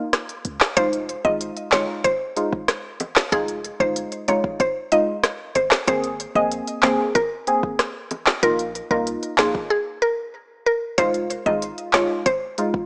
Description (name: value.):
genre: dancehall.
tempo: 94 BPM.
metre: 4/4.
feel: straight.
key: F minor.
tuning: A4 = 440 Hz.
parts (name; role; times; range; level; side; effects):
afro-pop drum kit; drums; 0.1-12.9 s; handclaps, hi-hat, kick drum, rim click, snare drum; -24 LUFS; equal; vintage 12-bit sampler grit.
clean 808-style bass; bass; 0.5-12.1 s; F1 to Db2; -41 LUFS; equal; none.
mallet-like synth pluck; melody; 0.8-12.7 s; Ab4 to Eb5; -24 LUFS; equal; chorus, tape echo.
deep mellow chord stab; accompaniment; 0.8-12.8 s; Ab3 to Ab4; -27 LUFS; equal; chorus.
bongos; percussion; 0.8-12.4 s; none; -34 LUFS; equal; none.
room: light reverb, digital ambience.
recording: small speaker sound.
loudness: -22 LUFS.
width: mono.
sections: 0.8-12.9 A section.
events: break 9.7-11.0.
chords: 0.0 N.C.; 0.8 Fm7; 5.9 Abadd9; 8.4 Bbsus4; 11.0 Fm7.